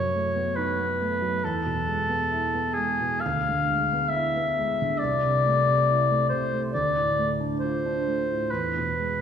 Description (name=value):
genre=classical, romantic duo for oboe and grand piano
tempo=62-70 BPM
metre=4/4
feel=rubato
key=unclear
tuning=A4 = 440 Hz
part: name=warm oboe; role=melody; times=0.0-9.2 s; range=G#4 to F5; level=-24 LUFS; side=left 2 dB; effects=none
part: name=dark concert grand piano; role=accompaniment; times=0.0-9.2 s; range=C2 to F4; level=-27 LUFS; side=right 2 dB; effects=none
room=wet concert hall reverb, RT60 2.3 s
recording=heard from further back in the room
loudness=-23 LUFS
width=side -8 dB against mid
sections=0.0-9.2 A section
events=none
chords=0.0 B7/F#; 1.4 E; 3.2 E7/D; 5.0 Am/C; 6.7 Dm7; 8.5 E